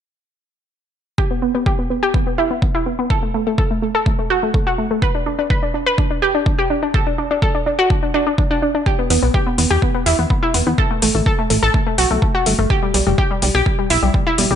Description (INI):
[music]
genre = progressive house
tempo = 125 BPM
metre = 4/4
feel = straight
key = unclear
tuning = A4 = 440 Hz
[part]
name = analog pluck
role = arpeggios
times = 1.2-14.6 s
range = G3 to B4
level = -18 LUFS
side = equal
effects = chorus, sidechain pumping, ping-pong delay
[part]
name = electronic kick drum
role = drums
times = 1.2-14.2 s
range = none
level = -19 LUFS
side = equal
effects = overdrive
[part]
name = plucky analog bass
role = bass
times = 9.1-14.6 s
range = F#1 to E2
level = -18 LUFS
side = equal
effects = tube saturation, sidechain pumping
[part]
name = electronic hi-hat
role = drums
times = 9.1-14.5 s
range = none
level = -20 LUFS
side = left 4 dB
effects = overdrive
[sound]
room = light reverb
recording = nothing above 10.7 kHz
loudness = -15 LUFS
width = side -9 dB against mid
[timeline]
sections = 1.2-14.6 A section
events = filter sweep on synth pluck 1.2-14.6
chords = 1.2 N.C.; 8.9 E5; 10.8 Gmaj7sus2 (rootless); 12.7 G